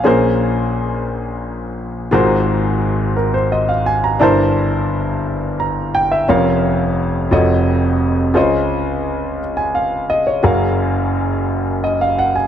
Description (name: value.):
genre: gospel.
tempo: 58 BPM (dotted quarters).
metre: 6/8.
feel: straight.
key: Bb minor.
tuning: A4 = 442 Hz.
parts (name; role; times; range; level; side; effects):
warm concert grand piano; solo; 0.0-12.5 s; F1 to Bb5; -14 LUFS; equal; none.
room: light reverb.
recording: none.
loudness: -14 LUFS.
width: side -9 dB against mid.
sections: 0.0-12.5 A section.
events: none.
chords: 0.0 Bbm9; 2.1 Ab13; 4.2 C13/G; 6.3 Bbm/F; 7.3 F7b9b13; 8.4 Dbmaj9; 10.4 Gbmaj9.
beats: | 0.05 1.09 | 2.12 3.16 | 4.20 5.24 | 6.28 7.32 | 8.36 9.40 | 10.44 11.48.